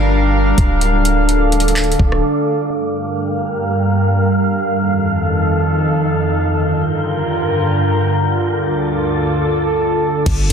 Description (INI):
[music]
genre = hip hop, atmospheric cloud-rap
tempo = free time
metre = none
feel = none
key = G minor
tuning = A4 = 440 Hz
[part]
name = warbly tape-like pad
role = sustained chords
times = 0.0-10.5 s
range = D2 to F5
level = -15 LUFS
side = equal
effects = chorus, built-in reverb, sidechain pumping, low-pass filter
[part]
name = warm 808-style bass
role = bass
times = 0.0-2.2, 10.3-10.5 s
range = D1 to G1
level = -16 LUFS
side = equal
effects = none
[part]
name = wind-like tuned noise texture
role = texture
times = 0.0-10.2 s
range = G3 to A5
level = -25 LUFS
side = equal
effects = built-in reverb
[part]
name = smooth R&B drum kit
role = drums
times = 0.6-2.2, 10.3-10.5 s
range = crash cymbal, handclaps, hi-hat, kick drum, rim click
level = -18 LUFS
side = equal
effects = none
[sound]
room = light reverb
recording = dense, heavily limited modern master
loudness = -14 LUFS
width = side -7 dB against mid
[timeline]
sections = 0.0-2.7 A section; 2.7-10.3 B section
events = break 2.2-2.7; filter sweep on ambient pad 2.7-10.3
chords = 0.0 Gm7; 0.8 Dm; 2.7 Gm7; 4.6 F7; 6.5 Gm7; 8.4 Dm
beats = free time